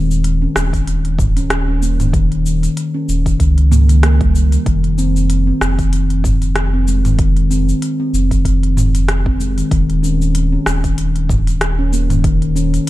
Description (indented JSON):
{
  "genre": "organic downtempo",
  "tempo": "95 BPM",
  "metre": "4/4",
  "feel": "swing 56% on 16ths",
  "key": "unclear",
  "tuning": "A4 = 440 Hz",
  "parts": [
    { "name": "steel tongue drum", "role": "arpeggios", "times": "0.0-12.9 s", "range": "Eb3 to Db4", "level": "-18 LUFS", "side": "left 1 dB", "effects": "ping-pong delay" },
    { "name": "warm sub bass", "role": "bass", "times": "0.0-12.8 s", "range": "Eb1 to Db2", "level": "-15 LUFS", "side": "equal", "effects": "sidechain pumping" },
    { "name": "afro-pop drum kit", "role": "drums", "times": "0.1-12.9 s", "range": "cabasa, hi-hat, rim click, toms", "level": "-22 LUFS", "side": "equal", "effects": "none" },
    { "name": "electronic kick drum", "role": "drums", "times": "0.7-12.4 s", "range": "none", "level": "-18 LUFS", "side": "equal", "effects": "none" }
  ],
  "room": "little or no reverb",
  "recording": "none",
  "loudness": "-13 LUFS",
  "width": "side -16 dB against mid",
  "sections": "0.0-12.9 A section",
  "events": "none",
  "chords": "0.0 Eb7(no3); 4.7 F7(no3); 9.7 Eb7(no3)"
}